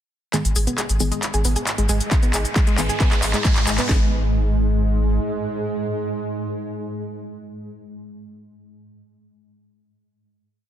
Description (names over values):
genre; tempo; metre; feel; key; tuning
driving peak-time techno; 135 BPM; 4/4; straight; G# minor; A4 = 444 Hz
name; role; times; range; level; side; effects
analog pluck; riff; 0.3-4.1 s; G#3 to G#4; -27 LUFS; equal; chorus, sidechain pumping, ping-pong delay
wavetable chord stab; stabs; 0.3-7.3 s; D#3 to G#4; -30 LUFS; left 1 dB; sidechain pumping, tape echo
swarming drone; drone; 1.6-7.3 s; G#2 to G#3; -27 LUFS; right 1 dB; built-in reverb, sidechain pumping
techno drum kit; drums; 0.3-3.9 s; handclaps, hi-hat, shaker; -25 LUFS; left 1 dB; overdrive, high-pass filter on snare, sidechain pumping on hats, high-pass filter on hats, sidechain pumping on perc, high-pass filter on perc
riser; sound effects; 1.5-3.9 s; none; -31 LUFS; right 1 dB; none
saturated sub bass; bass; 0.4-5.2 s; G#1; -21 LUFS; equal; tube saturation, sidechain pumping, low-pass filter
techno drum kit; drums; 2.1-4.0 s; handclaps, kick drum, snare drum; -18 LUFS; equal; overdrive
room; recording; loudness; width
light reverb; dense, heavily limited modern master; -18 LUFS; side -10 dB against mid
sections
0.3-3.9 build; 3.9-7.4 final chord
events
build-up 0.3-3.9; drum fill 0.3-3.9; filter sweep on synth arpeggio sound 0.3-3.9; filter sweep on synth stab 0.3-3.9; riser 1.5-3.9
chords
0.3 G#m